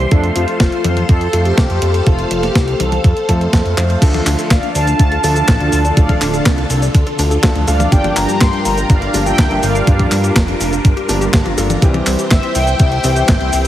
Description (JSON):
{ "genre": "italo disco", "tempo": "123 BPM", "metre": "4/4", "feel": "straight", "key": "D minor", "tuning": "A4 = 439 Hz", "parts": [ { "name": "phased string machine", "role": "sustained chords", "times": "0.0-13.7 s", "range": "D3 to C6", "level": "-21 LUFS", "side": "equal", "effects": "ensemble chorus, phaser" }, { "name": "warm concert grand piano", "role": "stabs", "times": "0.0-13.7 s", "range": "G2 to C5", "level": "-22 LUFS", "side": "equal", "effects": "none" }, { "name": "fat analog bass", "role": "bass", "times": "0.0-13.7 s", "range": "D1 to G2", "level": "-17 LUFS", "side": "equal", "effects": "none" }, { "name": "mellow synth brass", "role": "melody", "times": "0.1-13.7 s", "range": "D4 to C6", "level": "-20 LUFS", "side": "left 1 dB", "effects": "chorus, phaser, digital delay" }, { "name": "clean 12-bit digital drum machine", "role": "drums", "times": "0.1-13.7 s", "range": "cabasa, crash cymbal, handclaps, hi-hat, snare drum, toms", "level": "-20 LUFS", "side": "equal", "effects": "overdrive" }, { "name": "electronic kick drum", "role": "drums", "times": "0.1-13.4 s", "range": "none", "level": "-12 LUFS", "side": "equal", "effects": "overdrive" }, { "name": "warbly dusty pluck", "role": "arpeggios", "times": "4.0-13.7 s", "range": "C4 to A5", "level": "-26 LUFS", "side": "left 2 dB", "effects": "chorus, tape echo" } ], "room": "light reverb", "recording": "heavily compressed radio sound", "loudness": "-11 LUFS", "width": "side -12 dB against mid", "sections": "0.0-4.0 A section; 4.0-13.7 B section", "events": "drum fill 3.8", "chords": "0.1 F; 4.0 Dm; 7.9 Gm7; 11.8 C" }